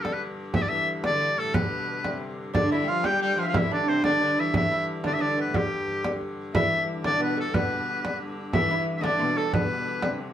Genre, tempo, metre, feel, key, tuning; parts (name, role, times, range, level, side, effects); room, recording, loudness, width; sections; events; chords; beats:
medieval dance; 120 BPM (dotted quarters); 6/8; straight; G mixolydian; A4 = 441 Hz
bright shawm; melody; 0.0-10.2 s; G4 to G5; -26 LUFS; left 1 dB
clear hurdy-gurdy; drone; 0.0-10.3 s; G2 to D3; -36 LUFS; left 2 dB
frame drum; percussion; 0.0-10.2 s; -27 LUFS; right 1 dB
clear viola da gamba; second line; 0.6-10.2 s; G2 to G3; -32 LUFS; left 3 dB
lute; second line; 2.5-10.2 s; G3 to G4; -30 LUFS; right 3 dB
wet studio reverb, RT60 0.7 s; band playing live in one room; -23 LUFS; side -10 dB against mid
0.0-6.5 A section; 6.5-10.3 A section
0.05 | 0.55 1.05 | 1.55 2.05 | 2.55 3.05 | 3.55 4.05 | 4.54 5.04 | 5.54 6.04 | 6.54 7.04 | 7.54 8.04 | 8.54 9.04 | 9.54 10.04